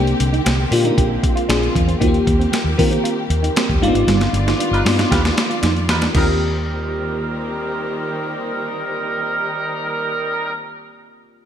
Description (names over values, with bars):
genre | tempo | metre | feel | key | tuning
polished 1980s jazz-funk pop | 116 BPM | 4/4 | straight | Eb major | A4 = 441 Hz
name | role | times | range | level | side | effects
bell-like FM electric piano | accompaniment | 0.0-11.5 s | Ab3 to Bb4 | -21 LUFS | left 2 dB | analog chorus
warm studio string section | sustained chords | 0.0-10.5 s | D3 to D5 | -26 LUFS | equal | none
mellow electric guitar | riff | 0.0-6.3 s | G3 to G4 | -26 LUFS | right 7 dB | wide subtle chorus
vintage muted fingered electric bass | bass | 0.0-10.5 s | G1 to Eb3 | -20 LUFS | equal | none
boom bap sampler-style drum kit | drums | 0.1-6.3 s | crash cymbal, hi-hat, kick drum, snare drum | -20 LUFS | equal | gated reverb
mellow horn section | second line | 4.7-10.5 s | G3 to B4 | -24 LUFS | right 2 dB | none
room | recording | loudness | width
moderate lush hall reverb, RT60 1.9 s, digital ambience | bright 1980s-style digital production | -16 LUFS | side -9 dB against mid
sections
0.0-6.1 A section; 6.1-10.3 B section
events
drum fill 4.1-6.1; band accent 4.1-6.1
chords
0.0 Abmaj9#11/C; 1.5 Bb9; 2.0 Eb6; 3.8 G7b13; 6.1 Eb6